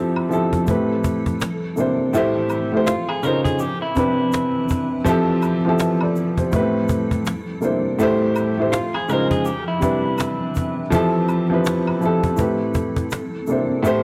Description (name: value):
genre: lo-fi hip hop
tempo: 82 BPM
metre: 4/4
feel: swing 61% on 16ths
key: C major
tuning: A4 = 437 Hz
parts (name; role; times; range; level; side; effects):
- dark upright piano; accompaniment; 0.0-14.0 s; A2 to E5; -21 LUFS; equal; cassette tape
- granular cloud pad; sustained chords; 0.1-14.0 s; E3 to B4; -32 LUFS; equal; built-in reverb
- woodblock and egg shaker; percussion; 0.2-14.0 s; none; -37 LUFS; equal; none
- cajon; drums; 0.5-14.0 s; none; -26 LUFS; equal; none
- electric guitar through a small old amp; second line; 2.9-10.7 s; E4 to Bb4; -29 LUFS; equal; spring reverb, analog delay
room: light reverb, small room ambience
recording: none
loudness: -20 LUFS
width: mono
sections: 0.0-14.0 A section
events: break 0.0-10.9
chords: 0.0 Fmaj7; 0.7 Am7; 1.4 C7; 2.1 Fmaj7/A; 2.9 Dbmaj7; 3.6 Cmaj7; 5.1 Fmaj7; 6.5 Am7; 7.3 C7; 8.0 Fmaj7/A; 8.7 Dbmaj7; 9.5 Cmaj7; 10.9 Fmaj7; 12.4 Am7; 13.1 C7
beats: 0.68 1.41 | 2.14 2.87 3.61 4.34 | 5.07 5.80 6.53 7.26 | 8.00 8.73 9.46 10.19 | 10.92 11.65 12.39 13.12 | 13.85